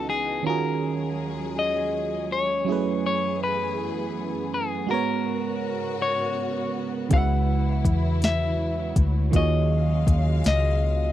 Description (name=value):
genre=slow six-eight R&B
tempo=54 BPM (dotted quarters)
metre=6/8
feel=straight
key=unclear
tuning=A4 = 440 Hz
part: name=clean electric guitar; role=melody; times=0.0-11.1 s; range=G#4 to F#5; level=-28 LUFS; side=left 4 dB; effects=tape echo
part: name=FM electric piano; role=accompaniment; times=0.0-11.1 s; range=C#3 to E5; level=-28 LUFS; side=right 7 dB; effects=chorus
part: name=warm studio string section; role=sustained chords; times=0.0-11.1 s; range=C#2 to E#5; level=-33 LUFS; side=left 2 dB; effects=none
part: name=vintage muted fingered electric bass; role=bass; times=7.1-11.1 s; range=C#2 to E2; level=-22 LUFS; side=left 1 dB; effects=none
part: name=smooth R&B drum kit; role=drums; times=7.1-10.6 s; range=hi-hat, kick drum, snare drum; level=-22 LUFS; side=left 1 dB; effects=overdrive
room=little or no reverb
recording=dry, close 1970s-style studio recording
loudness=-22 LUFS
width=side -12 dB against mid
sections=0.0-11.1 A section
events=none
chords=0.4 D#m11; 2.7 F#m11; 4.9 G#m11; 7.1 C#m7; 9.3 D#m11